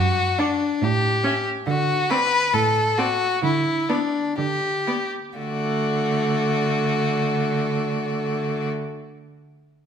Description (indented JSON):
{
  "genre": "quick classical-period movement for string quartet",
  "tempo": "117-142 BPM",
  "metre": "4/4",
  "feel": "straight",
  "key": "D major",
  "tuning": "A4 = 440 Hz",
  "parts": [
    { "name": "rich violin", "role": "second line", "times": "0.0-8.7 s", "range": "D4 to B4", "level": "-22 LUFS", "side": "left 3 dB", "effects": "none" },
    { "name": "clear cello", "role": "bass", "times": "0.0-8.7 s", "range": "F#2 to D3", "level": "-26 LUFS", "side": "right 5 dB", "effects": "none" },
    { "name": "clear violin", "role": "melody", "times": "0.4-8.7 s", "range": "D5 to F#5", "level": "-33 LUFS", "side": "left 6 dB", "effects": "none" },
    { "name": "clear viola", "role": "accompaniment", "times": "0.4-8.7 s", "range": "A3 to D4", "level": "-26 LUFS", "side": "equal", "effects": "none" }
  ],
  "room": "wet recital hall reverb, RT60 1.5 s",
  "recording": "minimal, uncompressed stereo recording",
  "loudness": "-20 LUFS",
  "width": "side -8 dB against mid",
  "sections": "0.0-5.4 A section; 5.4-9.4 B section",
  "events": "slowing down 0.8-5.4",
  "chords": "0.0 D/F#; 0.8 A7(no3); 1.7 D7; 3.4 G5/D; 5.4 D"
}